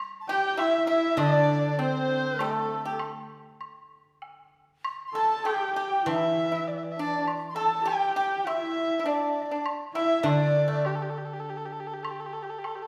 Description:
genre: chinese traditional, Chinese chamber ensemble.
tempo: 100 BPM.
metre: 4/4.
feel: rubato.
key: G zhi mode.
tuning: A4 = 440 Hz.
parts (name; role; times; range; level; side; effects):
bright reedy large dizi; second line; 0.2-10.8 s; A4 to C6; -36 LUFS; equal; none.
dark erhu; melody; 0.3-12.9 s; G4 to A5; -31 LUFS; equal; none.
pipa; second line; 0.3-10.8 s; A3 to A4; -34 LUFS; equal; none.
rich horsehead fiddle; second line; 0.3-10.8 s; A3 to A4; -34 LUFS; equal; none.
woodblock; percussion; 0.6-12.8 s; none; -41 LUFS; equal; none.
steel-string zither; accompaniment; 1.2-12.0 s; D3 to E3; -33 LUFS; equal; none.
room: wet recital hall reverb, RT60 1.5 s.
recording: recorded in a church or concert hall.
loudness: -27 LUFS.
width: mono.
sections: 0.0-12.9 A section.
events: none.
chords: none.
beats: | 0.00 0.59 1.19 1.79 | 2.39 3.00 3.61 4.22 | 4.84 5.45 6.06 6.67 | 7.27 7.87 8.46 9.06 | 9.65 10.25 10.84 11.43 | 12.03 12.63.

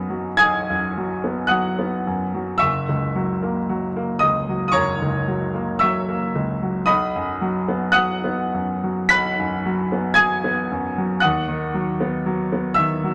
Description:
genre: classical, romantic nocturne for solo piano.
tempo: 46-59 BPM.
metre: 4/4.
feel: rubato.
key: B major.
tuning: A4 = 441 Hz.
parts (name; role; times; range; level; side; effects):
clear baby grand piano; solo; 0.0-13.1 s; F#1 to B6; -21 LUFS; equal; none.
room: moderate stone room reverb, RT60 1.1 s.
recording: none.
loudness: -21 LUFS.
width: mono.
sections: 0.0-13.1 A section.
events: none.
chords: 0.0 B; 2.6 F#7; 6.9 B; 11.2 B/D#.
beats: 0.40 1.51 | 2.62 3.70 4.76 5.82 | 6.89 7.95 9.13 10.18 | 11.22 12.25.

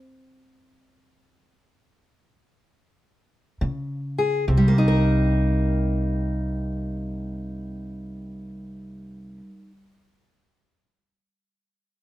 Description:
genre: acoustic country blues, solo or duo.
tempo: free time.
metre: none.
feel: none.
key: C minor.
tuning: A4 = 440 Hz.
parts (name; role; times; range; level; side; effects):
fingerpicked steel-string acoustic guitar; melody; 3.6-9.8 s; C3 to Bb4; -25 LUFS; equal; plate reverb.
upright bass; bass; 3.6-9.4 s; C2 to Db3; -24 LUFS; equal; none.
room: light reverb.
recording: none.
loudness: -21 LUFS.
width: side -15 dB against mid.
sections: 0.0-4.5 A section; 4.5-8.1 B section.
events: slowing down 0.0-4.5; stop 0.0-3.6.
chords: 0.0 N.C.; 3.6 Db5; 4.5 Cm7.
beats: free time.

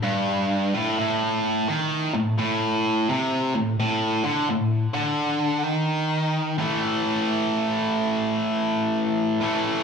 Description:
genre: rock.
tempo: 86 BPM.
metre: 4/4.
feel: swing 64% on 8ths.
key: A minor.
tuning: A4 = 440 Hz.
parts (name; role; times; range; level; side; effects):
tight distorted guitar; solo; 0.0-9.8 s; G2 to A3; -21 LUFS; equal; distortion, slapback echo.
room: moderate club reverb, RT60 0.6 s.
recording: live gig heard through the venue's PA, club reverb.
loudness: -21 LUFS.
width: side -6 dB against mid.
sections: 0.0-6.6 A section; 6.6-9.8 B section.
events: none.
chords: 0.0 N.C.; 6.6 A5.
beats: 0.30 | 1.00 1.70 2.40 3.10 | 3.80 4.50 5.20 5.90 | 6.61 7.31 8.01 8.71 | 9.42.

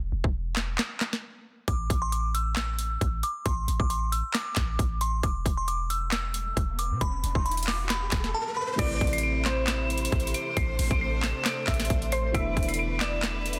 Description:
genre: hip hop, trap.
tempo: 135 BPM.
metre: 4/4.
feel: half-time.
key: A minor.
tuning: A4 = 445 Hz.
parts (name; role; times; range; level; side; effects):
clean 808-style bass; bass; 0.0-13.6 s; E1 to B2; -32 LUFS; equal; none.
trap drum kit; drums; 0.2-13.6 s; crash cymbal, handclaps, hi-hat, kick drum, snare drum; -31 LUFS; equal; overdrive.
glassy synth bell; melody; 1.7-13.6 s; A5 to E7; -34 LUFS; equal; chorus, low-pass filter, delay.
riser; sound effects; 6.4-8.8 s; none; -41 LUFS; equal; none.
warbly dusty pluck; second line; 8.8-13.6 s; C5 to E5; -36 LUFS; equal; chorus, delay.
felt-muted upright piano; accompaniment; 8.8-13.6 s; B2 to A4; -39 LUFS; equal; low-pass filter.
clear studio string section; sustained chords; 8.8-13.6 s; C3 to C5; -38 LUFS; equal; none.
room: little or no reverb.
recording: dense, heavily limited modern master.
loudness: -28 LUFS.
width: mono.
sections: 0.0-8.8 A section; 8.8-13.6 B section.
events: break 0.0-1.7; riser 6.4-8.8; drums muted 8.3-8.8.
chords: 0.0 E5; 1.7 A5; 5.2 E5; 8.8 Am; 12.3 E7sus4.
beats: 0.34 0.79 1.23 | 1.68 2.12 2.57 3.01 | 3.46 3.90 4.34 4.79 | 5.23 5.68 6.12 6.57 | 7.01 7.46 7.90 8.35 | 8.79 9.23 9.68 10.12 | 10.57 11.01 11.46 11.90 | 12.35 12.79 13.23.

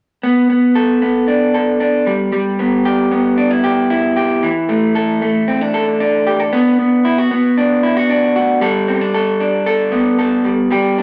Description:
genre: indie pop.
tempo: 114 BPM.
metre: 4/4.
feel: straight.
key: G major.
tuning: A4 = 440 Hz.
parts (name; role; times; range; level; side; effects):
electric guitar through a small old amp; solo; 0.2-11.0 s; E3 to A4; -15 LUFS; equal; none.
room: wet large studio reverb, RT60 1.2 s.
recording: band playing live in one room.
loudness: -15 LUFS.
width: mono.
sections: 0.2-8.6 A section; 8.6-11.0 B section.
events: none.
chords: 0.2 Bm7; 2.1 Em; 4.4 Dsus2; 6.5 Bm; 8.6 Gadd9; 10.5 Em (rootless).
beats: | 0.24 0.76 1.28 1.81 | 2.33 2.85 3.38 3.90 | 4.43 4.95 5.47 6.00 | 6.52 7.05 7.57 8.10 | 8.62 9.15 9.67 10.20 | 10.72.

